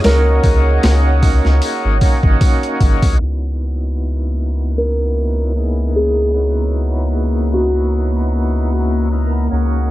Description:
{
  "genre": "trip hop",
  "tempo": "76 BPM",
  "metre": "4/4",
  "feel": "swing 55% on 16ths",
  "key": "C# dorian",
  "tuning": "A4 = 440 Hz",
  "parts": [
    { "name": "felt-muted upright piano", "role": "melody", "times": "0.0-9.1 s", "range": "F#4 to A#4", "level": "-21 LUFS", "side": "equal", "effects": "vintage 12-bit sampler grit, dub echo" },
    { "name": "overdriven tonewheel organ", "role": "accompaniment", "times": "0.0-9.9 s", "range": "A#3 to A#4", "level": "-23 LUFS", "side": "equal", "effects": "slow rotary speaker, tremolo, tape echo" },
    { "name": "deep dark ambient pad", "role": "sustained chords", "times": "0.0-9.9 s", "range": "C#5 to E6", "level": "-28 LUFS", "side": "right 2 dB", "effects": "chorus, built-in reverb" },
    { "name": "soft dub sub bass", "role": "bass", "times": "0.0-9.9 s", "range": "G#1 to C#2", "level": "-16 LUFS", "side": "equal", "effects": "none" },
    { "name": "boom bap sampler-style drum kit", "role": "drums", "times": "0.0-3.2 s", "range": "hi-hat, kick drum, snare drum", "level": "-14 LUFS", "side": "equal", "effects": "overdrive" },
    { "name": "wind-like tuned noise texture", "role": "texture", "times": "0.0-9.9 s", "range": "A#3 to A#5", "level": "-26 LUFS", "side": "left 2 dB", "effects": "built-in reverb" }
  ],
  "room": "little or no reverb",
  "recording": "dark, warm production, vinyl crackle, low-pass filter",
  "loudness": "-13 LUFS",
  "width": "side -16 dB against mid",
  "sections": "0.0-3.2 A section; 3.2-9.9 B section",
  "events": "filter sweep 3.2-9.9",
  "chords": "0.0 D#m7; 3.2 C#m11"
}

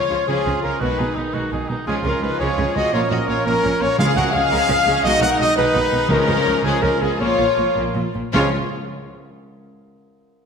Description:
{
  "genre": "cinematic, heroic adventure film score",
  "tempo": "103-115 BPM (dotted quarters)",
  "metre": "6/8",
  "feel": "straight",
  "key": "Db mixolydian",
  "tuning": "A4 = 441 Hz",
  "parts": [
    { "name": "warm symphonic violin section", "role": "melody", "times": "0.0-8.6 s", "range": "Cb4 to Db5", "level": "-28 LUFS", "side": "left 3 dB", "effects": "none" },
    { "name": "dark clarinet", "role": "second line", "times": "0.0-8.5 s", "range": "F4 to Gb5", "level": "-27 LUFS", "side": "left 1 dB", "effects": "none" },
    { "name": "rich symphonic violin section", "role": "second line", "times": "0.0-8.6 s", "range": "F4 to Gb5", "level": "-29 LUFS", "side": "left 3 dB", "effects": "none" },
    { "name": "rich symphonic viola section", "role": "accompaniment", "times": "0.0-8.5 s", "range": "F3 to F4", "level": "-27 LUFS", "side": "right 1 dB", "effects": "none" },
    { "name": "bright trombone section", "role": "sustained chords", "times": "0.0-8.5 s", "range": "Eb3 to Db4", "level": "-29 LUFS", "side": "right 4 dB", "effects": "none" },
    { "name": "warm French horn section", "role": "sustained chords", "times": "0.0-8.5 s", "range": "Gb4 to F5", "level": "-23 LUFS", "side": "left 4 dB", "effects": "none" },
    { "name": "clear trumpet", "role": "stabs", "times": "0.0-8.5 s", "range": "Ab4 to Gb5", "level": "-25 LUFS", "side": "right 2 dB", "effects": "none" },
    { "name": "rich symphonic cello section", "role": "bass", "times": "0.1-8.6 s", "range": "Bb2 to Db3", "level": "-27 LUFS", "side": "right 2 dB", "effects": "none" },
    { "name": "rich symphonic double bass section", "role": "bass", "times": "0.1-8.5 s", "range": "Bb1 to Db2", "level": "-27 LUFS", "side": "right 3 dB", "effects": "none" },
    { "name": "warm cor anglais", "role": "second line", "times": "0.3-8.5 s", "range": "Db4 to F5", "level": "-28 LUFS", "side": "right 2 dB", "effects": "none" },
    { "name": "timpani", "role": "percussion", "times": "4.0-8.5 s", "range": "Db3", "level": "-26 LUFS", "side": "left 1 dB", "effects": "none" }
  ],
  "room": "wet scoring stage reverb, RT60 1.7 s",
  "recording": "none",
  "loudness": "-16 LUFS",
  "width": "side -6 dB against mid",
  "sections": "0.0-8.3 A section; 8.3-9.5 B section",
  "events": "slowing down 5.6-8.3",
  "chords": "0.0 Db; 0.8 Cb6; 1.9 Db; 2.9 Bbm; 4.0 Db; 5.0 Cb6; 6.1 Db; 7.2 Bbm; 8.3 Db"
}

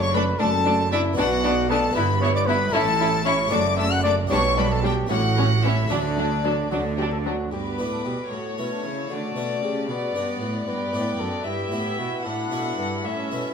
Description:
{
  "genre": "classical, baroque-style concerto movement with solo episodes",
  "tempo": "76 BPM (dotted quarters)",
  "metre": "6/8",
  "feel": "straight",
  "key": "D major",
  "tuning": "A4 = 440 Hz",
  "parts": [
    { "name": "clear chamber violin section", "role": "melody", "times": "0.0-13.5 s", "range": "D5 to F#6", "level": "-29 LUFS", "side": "left 3 dB", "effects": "none" },
    { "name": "dark trumpet", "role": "melody", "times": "0.0-13.5 s", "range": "D4 to F#5", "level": "-27 LUFS", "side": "left 2 dB", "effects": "none" },
    { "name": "harpsichord", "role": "accompaniment", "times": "0.0-13.5 s", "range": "F#2 to G4", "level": "-32 LUFS", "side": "left 1 dB", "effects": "none" },
    { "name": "rich chamber double bass section", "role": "bass", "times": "0.0-7.4 s", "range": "F#1 to D2", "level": "-27 LUFS", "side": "right 4 dB", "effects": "none" },
    { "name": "rich studio cello section", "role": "bass", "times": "0.0-13.4 s", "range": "F#2 to D3", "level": "-28 LUFS", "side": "right 2 dB", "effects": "none" },
    { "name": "rich chamber violin section", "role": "second line", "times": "0.1-13.5 s", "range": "C#4 to F#5", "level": "-28 LUFS", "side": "left 2 dB", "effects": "none" },
    { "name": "warm studio viola section", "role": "accompaniment", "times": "0.1-13.5 s", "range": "F#3 to E4", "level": "-31 LUFS", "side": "equal", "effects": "none" }
  ],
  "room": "wet recital hall reverb, RT60 1.7 s",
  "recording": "minimal, uncompressed stereo recording",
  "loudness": "-20 LUFS",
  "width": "side -6 dB against mid",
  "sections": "0.0-7.5 A section; 7.5-13.5 B section",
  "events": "none",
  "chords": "0.0 D/F#; 1.2 Bm; 2.0 Em/G; 2.7 A; 3.5 D/F#; 4.3 G/B; 5.1 A7; 5.9 D; 7.5 G; 8.3 A; 9.1 D; 9.9 Bm; 10.7 G; 11.5 Em/G; 12.3 Asus4"
}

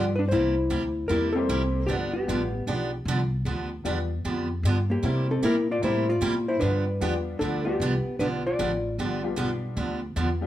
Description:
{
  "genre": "country, western swing",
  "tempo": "152 BPM",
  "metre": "4/4",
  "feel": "swing 66% on 8ths",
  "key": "G mixolydian",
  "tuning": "A4 = 441 Hz",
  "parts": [
    { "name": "hollow-body jazz guitar", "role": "melody", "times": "0.0-8.9 s", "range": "Bb3 to D5", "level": "-26 LUFS", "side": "left 1 dB", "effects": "plate reverb" },
    { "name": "clear upright piano", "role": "accompaniment", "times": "0.0-10.5 s", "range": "G3 to Bb4", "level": "-33 LUFS", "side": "left 4 dB", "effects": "none" },
    { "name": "picked steel-string acoustic guitar", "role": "accompaniment", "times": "0.0-10.3 s", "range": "C3 to G4", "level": "-30 LUFS", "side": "right 3 dB", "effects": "none" },
    { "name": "upright bass", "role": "bass", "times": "0.0-10.5 s", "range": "G1 to C3", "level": "-28 LUFS", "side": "equal", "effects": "none" }
  ],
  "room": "light reverb",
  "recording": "small room ambience",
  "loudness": "-24 LUFS",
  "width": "side -13 dB against mid",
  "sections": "0.0-10.5 A section",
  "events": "none",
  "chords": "0.3 C7; 1.9 G7; 5.0 C7; 6.6 G7"
}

